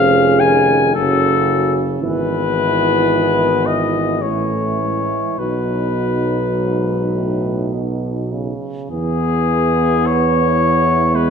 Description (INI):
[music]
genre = classical, hymn-like piece for brass band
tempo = 50-57 BPM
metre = 3/4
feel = rubato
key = E major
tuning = A4 = 439 Hz
[part]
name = clear flugelhorn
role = melody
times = 0.0-11.3 s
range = G#4 to G#5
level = -18 LUFS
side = left 6 dB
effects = none
[part]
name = mellow French horn section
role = second line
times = 0.0-11.3 s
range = D#4 to G#4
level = -22 LUFS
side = right 5 dB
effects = none
[part]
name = warm euphonium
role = accompaniment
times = 0.0-11.3 s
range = G#2 to B3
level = -23 LUFS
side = right 6 dB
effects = none
[part]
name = warm trombone section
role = accompaniment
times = 0.0-11.3 s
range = F#3 to C#4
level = -24 LUFS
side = equal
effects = none
[part]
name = mellow tuba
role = bass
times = 0.0-11.3 s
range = E#1 to E2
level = -21 LUFS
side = equal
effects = none
[sound]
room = moderate concert hall reverb, RT60 1.9 s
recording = minimal, uncompressed stereo recording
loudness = -14 LUFS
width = side -6 dB against mid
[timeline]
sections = 0.0-8.9 A section; 8.9-11.3 B section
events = none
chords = 0.0 C#/E#; 0.9 F#m; 2.0 E/G#; 4.2 A; 5.4 B; 8.9 E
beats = 0.95 | 2.03 3.12 4.22 | 5.39 6.56 7.73 | 8.90 10.07 11.15